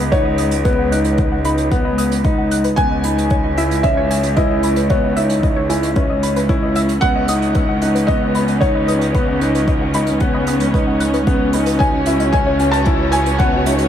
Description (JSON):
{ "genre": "piano and strings electronica", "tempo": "113 BPM", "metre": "4/4", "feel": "straight", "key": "C# minor", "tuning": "A4 = 441 Hz", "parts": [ { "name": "felt-muted upright piano", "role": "melody", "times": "0.0-13.9 s", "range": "B4 to A5", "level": "-22 LUFS", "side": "equal", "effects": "wide subtle chorus, tape echo" }, { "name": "clear chamber cello section", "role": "bass", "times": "0.0-13.9 s", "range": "C#2", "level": "-19 LUFS", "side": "right 1 dB", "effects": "sidechain pumping" }, { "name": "warbly dusty pluck", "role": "arpeggios", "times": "0.1-13.9 s", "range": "B4 to F#6", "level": "-26 LUFS", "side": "left 2 dB", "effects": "chorus, sidechain pumping, tape echo" }, { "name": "dark grand piano", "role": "riff", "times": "0.1-13.9 s", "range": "B3 to E4", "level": "-20 LUFS", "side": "left 1 dB", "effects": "tape echo" }, { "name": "electronic kick drum", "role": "drums", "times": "0.1-13.5 s", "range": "none", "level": "-18 LUFS", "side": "equal", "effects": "none" }, { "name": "hi-hat", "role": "drums", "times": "0.1-13.9 s", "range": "none", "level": "-30 LUFS", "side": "right 6 dB", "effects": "none" }, { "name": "dark studio string section", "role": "sustained chords", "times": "2.8-13.9 s", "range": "C#4 to C#5", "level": "-23 LUFS", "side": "equal", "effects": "none" } ], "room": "moderate huge ambient reverb, RT60 8.7 s", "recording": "dreamy mix soaked in reverb", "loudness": "-14 LUFS", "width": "side -9 dB against mid", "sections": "0.0-13.9 A section", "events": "none", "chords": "0.0 B/C#; 2.8 C#m9; 7.0 B/C#; 11.3 C#m9" }